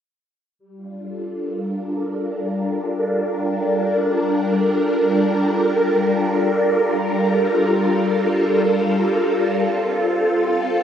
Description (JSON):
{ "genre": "ambient", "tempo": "free time", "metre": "none", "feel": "none", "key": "G minor", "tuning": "A4 = 437 Hz", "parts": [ { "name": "phased string machine", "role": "sustained chords", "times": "0.6-10.8 s", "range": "G3 to Bb4", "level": "-17 LUFS", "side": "equal", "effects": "ensemble chorus, phaser" } ], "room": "wet huge ambient reverb, RT60 8.3 s", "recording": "cassette tape", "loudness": "-17 LUFS", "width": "side -8 dB against mid", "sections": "0.6-10.8 A section", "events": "none", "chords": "0.6 Gm7; 9.6 F", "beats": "free time" }